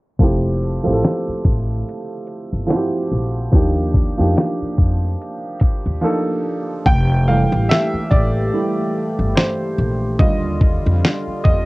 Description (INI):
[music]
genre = lo-fi hip hop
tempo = 72 BPM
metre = 4/4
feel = swing 58% on 16ths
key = F major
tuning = A4 = 441 Hz
[part]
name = warm upright piano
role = accompaniment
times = 0.2-11.7 s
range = D3 to G5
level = -21 LUFS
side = right 1 dB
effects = cassette tape
[part]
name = upright bass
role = bass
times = 0.2-11.7 s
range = F1 to F2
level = -19 LUFS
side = equal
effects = transformer saturation
[part]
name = dusty soul sampler-style drum kit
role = drums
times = 0.2-11.7 s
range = hi-hat, kick drum, snare drum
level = -16 LUFS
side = equal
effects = cassette tape
[part]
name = warm analog pad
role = sustained chords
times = 6.9-11.7 s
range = D3 to G4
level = -24 LUFS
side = left 1 dB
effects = chorus, cassette tape
[sound]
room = light reverb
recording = home recording on cassette, low-pass filter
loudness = -16 LUFS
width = side -21 dB against mid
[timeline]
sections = 0.2-6.9 A section; 6.9-11.7 B section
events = filter sweep 0.2-6.9; silent gap 6.0-6.9; hi-hats muted 6.9-11.7; upright piano solo 6.9-11.7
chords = 0.2 Fmaj9; 3.5 Ebmaj9; 6.9 Fmaj9; 10.2 Ebmaj9